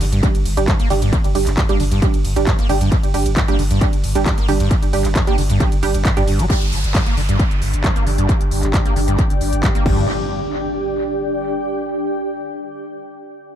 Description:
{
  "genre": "driving peak-time techno",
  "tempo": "134 BPM",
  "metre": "4/4",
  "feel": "straight",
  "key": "G minor",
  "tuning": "A4 = 440 Hz",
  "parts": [
    { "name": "screaming distorted acid line", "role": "riff", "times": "0.0-10.1 s", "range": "G2 to Bb3", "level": "-23 LUFS", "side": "equal", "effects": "distortion, wide subtle chorus, sidechain pumping, analog delay" },
    { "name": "warm sub bass", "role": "bass", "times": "0.0-10.1 s", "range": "G1", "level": "-20 LUFS", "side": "equal", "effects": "overdrive, sidechain pumping, low-pass filter" },
    { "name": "techno drum kit", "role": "drums", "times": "0.0-10.0 s", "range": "crash cymbal, handclaps, hi-hat, ride cymbal", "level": "-26 LUFS", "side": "equal", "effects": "overdrive, sidechain pumping on hats, sidechain pumping on cymbals, tape echo" },
    { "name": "filtered dub chord stab", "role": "stabs", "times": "0.2-6.3 s", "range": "G3 to G4", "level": "-22 LUFS", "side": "right 5 dB", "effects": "chorus, sidechain pumping, analog delay" },
    { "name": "electronic kick drum", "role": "drums", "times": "0.2-10.0 s", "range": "none", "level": "-18 LUFS", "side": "equal", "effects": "overdrive" },
    { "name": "downlifter and impact", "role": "sound effects", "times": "6.5-11.6 s", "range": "none", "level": "-29 LUFS", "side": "equal", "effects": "none" },
    { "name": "granular cloud pad", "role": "texture", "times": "7.7-11.8 s", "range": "D4 to G5", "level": "-22 LUFS", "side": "equal", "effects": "built-in reverb, sidechain pumping" }
  ],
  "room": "digital ambience",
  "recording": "echo-heavy mix",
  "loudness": "-15 LUFS",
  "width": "side -10 dB against mid",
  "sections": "0.0-6.5 A section; 6.5-10.1 B section; 10.1-11.9 C section",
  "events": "drop 0.0-6.5",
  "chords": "0.0 G5"
}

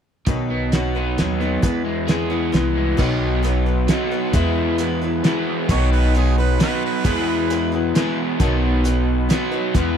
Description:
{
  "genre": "folk rock and heartland rock",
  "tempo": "133 BPM",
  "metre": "3/4",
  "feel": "straight",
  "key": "unclear",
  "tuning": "A4 = 442 Hz",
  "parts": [
    { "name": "picked old ladder-braced acoustic guitar", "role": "accompaniment", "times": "0.3-10.0 s", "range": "B2 to B4", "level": "-24 LUFS", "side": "left 6 dB", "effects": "none" },
    { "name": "crunchy overdriven guitar", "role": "riff", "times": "0.3-10.0 s", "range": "E2 to G#4", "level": "-22 LUFS", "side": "right 2 dB", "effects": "none" },
    { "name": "upright bass", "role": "bass", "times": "0.3-10.0 s", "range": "B1 to E2", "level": "-22 LUFS", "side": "equal", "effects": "none" },
    { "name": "cloth-damped thuddy drum kit", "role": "drums", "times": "0.3-9.9 s", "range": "crash cymbal, hi-hat, kick drum, snare drum", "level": "-20 LUFS", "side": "equal", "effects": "none" },
    { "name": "clear harmonica", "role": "second line", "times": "5.7-7.7 s", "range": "G#4 to C#5", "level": "-26 LUFS", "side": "right 13 dB", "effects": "none" }
  ],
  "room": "little or no reverb",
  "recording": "dry, close 1970s-style studio recording",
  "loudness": "-17 LUFS",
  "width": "side -8 dB against mid",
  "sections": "0.3-3.0 A section; 3.0-10.0 B section",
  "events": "none",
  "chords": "0.3 B; 1.6 E; 3.0 B; 4.3 E; 5.7 B; 7.0 E; 8.4 B"
}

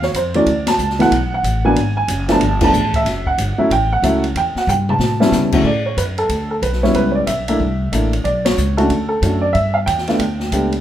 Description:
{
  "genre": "jazz piano trio",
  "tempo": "185 BPM",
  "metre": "4/4",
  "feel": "swing 63% on 8ths",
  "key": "D major",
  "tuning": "A4 = 440 Hz",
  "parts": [
    { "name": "warm upright piano", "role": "melody", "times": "0.0-10.7 s", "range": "D2 to A5", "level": "-16 LUFS", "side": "right 1 dB", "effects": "none" },
    { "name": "upright bass", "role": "bass", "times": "0.0-10.8 s", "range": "F#1 to C#3", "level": "-20 LUFS", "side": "equal", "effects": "none" },
    { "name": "open jazz drum kit", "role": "drums", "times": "0.0-10.8 s", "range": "crash cymbal, hi-hat, kick drum, ride cymbal, snare drum, toms", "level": "-24 LUFS", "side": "left 2 dB", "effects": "none" }
  ],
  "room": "light reverb",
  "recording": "band playing live in one room",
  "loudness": "-14 LUFS",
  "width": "side -11 dB against mid",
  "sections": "0.0-5.7 A section; 5.7-10.8 B section",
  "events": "band accent 0.6, 2.6, 8.4; drum fill 4.7-5.3",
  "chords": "0.5 D6; 1.8 G#7(no3); 2.4 Gsus2; 3.1 F#m7; 4.4 Em; 5.0 A7; 5.7 Dmaj7; 7.0 C#m7b5; 7.6 C13; 8.3 Bm7; 9.6 Gadd9"
}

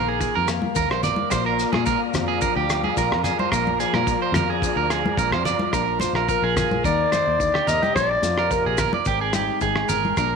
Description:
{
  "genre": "highlife guitar band",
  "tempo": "108 BPM",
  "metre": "4/4",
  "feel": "straight",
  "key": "Bb mixolydian",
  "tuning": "A4 = 442 Hz",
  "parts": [
    { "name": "fingerpicked plugged-in swing-style acoustic guitar", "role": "accompaniment", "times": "0.0-10.4 s", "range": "Ab2 to Bb4", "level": "-28 LUFS", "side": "left 13 dB", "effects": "none" },
    { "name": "electric guitar at the edge of break-up", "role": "arpeggios", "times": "0.0-10.4 s", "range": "G4 to D5", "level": "-23 LUFS", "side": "right 9 dB", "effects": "slapback echo" },
    { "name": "fingered electric bass", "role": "bass", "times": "0.0-10.4 s", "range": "Ab1 to Bb2", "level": "-28 LUFS", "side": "left 1 dB", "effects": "none" },
    { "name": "cloth-damped thuddy drum kit", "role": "drums", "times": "0.2-10.3 s", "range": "hi-hat, kick drum, rim click", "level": "-29 LUFS", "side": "left 1 dB", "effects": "none" },
    { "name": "maracas", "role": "percussion", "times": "0.2-10.3 s", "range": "none", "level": "-36 LUFS", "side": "left 16 dB", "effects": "none" },
    { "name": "congas", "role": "percussion", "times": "0.6-10.2 s", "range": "none", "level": "-29 LUFS", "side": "left 2 dB", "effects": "none" },
    { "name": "tonewheel organ", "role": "sustained chords", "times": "1.3-5.7 s", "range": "D5 to Bb5", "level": "-33 LUFS", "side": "left 1 dB", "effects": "chorus vibrato, fast rotary speaker" },
    { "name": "growling clarinet", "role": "melody", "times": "6.3-9.1 s", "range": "Bb4 to Eb5", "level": "-22 LUFS", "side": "left 2 dB", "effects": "none" }
  ],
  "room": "moderate echo chamber reverb, RT60 2.5 s",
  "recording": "1960s-style stereo with parts hard left and right",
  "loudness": "-19 LUFS",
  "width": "side -5 dB against mid",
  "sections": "0.0-5.7 A section; 5.7-10.4 B section",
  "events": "none",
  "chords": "0.0 Ebsus2; 1.3 Bb; 6.8 Eb; 7.9 Bb; 9.1 Ab"
}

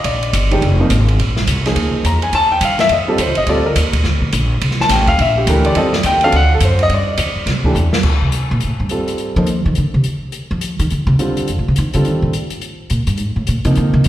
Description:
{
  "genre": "jazz piano trio",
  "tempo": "210 BPM",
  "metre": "4/4",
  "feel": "swing 62% on 8ths",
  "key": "F mixolydian",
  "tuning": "A4 = 439 Hz",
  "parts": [
    { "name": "warm concert grand piano", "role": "melody", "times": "0.0-14.0 s", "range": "C3 to Bb5", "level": "-16 LUFS", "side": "equal", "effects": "slapback echo" },
    { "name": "upright bass", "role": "bass", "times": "0.0-14.1 s", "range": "F1 to F3", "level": "-16 LUFS", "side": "equal", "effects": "none" },
    { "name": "open jazz drum kit", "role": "drums", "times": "0.0-14.1 s", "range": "crash cymbal, hi-hat, kick drum, ride cymbal, snare drum", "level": "-20 LUFS", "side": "right 1 dB", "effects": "none" }
  ],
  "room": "light reverb, small room ambience",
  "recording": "live gig heard through the venue's PA, recital hall reverb",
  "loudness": "-13 LUFS",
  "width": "side -13 dB against mid",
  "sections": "0.0-8.0 A section; 8.0-14.1 A section",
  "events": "grand piano solo 0.0-8.0; drum fill 7.8; upright bass solo 8.0-14.1",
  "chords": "0.0 Bb9; 2.3 F9; 3.5 Gm (rootless); 4.6 C9; 5.8 F9; 6.3 D; 6.9 G5; 7.5 C; 8.0 F; 10.3 Cmadd11; 11.5 F9; 12.6 Bb9"
}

